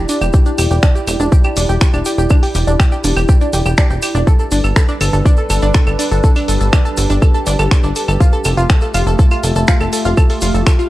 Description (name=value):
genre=melodic techno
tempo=122 BPM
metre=4/4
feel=straight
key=E phrygian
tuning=A4 = 440 Hz
part: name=dark analog pad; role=sustained chords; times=0.0-10.9 s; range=G3 to D5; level=-22 LUFS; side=equal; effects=chorus, phaser, sidechain pumping
part: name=plucky analog bass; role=bass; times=0.0-10.6 s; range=E1 to G1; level=-15 LUFS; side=equal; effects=tube saturation, sidechain pumping
part: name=wide unison pluck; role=arpeggios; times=0.1-10.8 s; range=D4 to A5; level=-20 LUFS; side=equal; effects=sidechain pumping, tape echo
part: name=house drum kit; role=drums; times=0.1-10.8 s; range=claves, finger snaps, hi-hat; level=-21 LUFS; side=equal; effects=studio reverb
part: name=tube shaker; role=percussion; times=0.1-10.9 s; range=none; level=-29 LUFS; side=right 1 dB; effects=none
part: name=electronic kick drum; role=drums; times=0.3-10.8 s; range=none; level=-11 LUFS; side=equal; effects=studio reverb
room=digital ambience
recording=dry, gritty hardware recording, cassette tape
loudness=-11 LUFS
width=side -16 dB against mid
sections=0.0-10.9 A section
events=none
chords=0.0 Em7; 4.3 Gadd9; 8.2 Fadd9